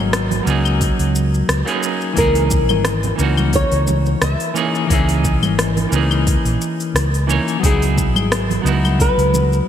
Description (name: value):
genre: sunset chillout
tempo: 88 BPM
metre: 4/4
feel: swing 54% on 16ths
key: C# dorian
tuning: A4 = 439 Hz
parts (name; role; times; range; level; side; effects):
- flamenco guitar; melody; 0.0-9.6 s; G#4 to E5; -22 LUFS; left 1 dB; analog chorus, ping-pong delay
- semi-hollow electric guitar; accompaniment; 0.0-9.7 s; E3 to C#5; -20 LUFS; equal; auto-pan, ping-pong delay
- mellow fretless electric bass; bass; 0.0-9.6 s; G#1 to C#2; -18 LUFS; equal; none
- downlifter; sound effects; 0.1-2.2 s; none; barely audible; none; none
- deep house drum kit; drums; 0.1-9.6 s; claves, hi-hat, rim click, shaker; -23 LUFS; left 2 dB; gated reverb
- congas; percussion; 0.3-9.5 s; none; -26 LUFS; right 4 dB; none
- electronic kick drum; drums; 0.8-9.1 s; none; -19 LUFS; equal; none
room: light reverb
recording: bright 1980s-style digital production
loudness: -14 LUFS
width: side -9 dB against mid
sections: 0.0-9.7 A section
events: none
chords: 0.0 G#7sus4; 2.2 C#m69; 7.6 Emaj9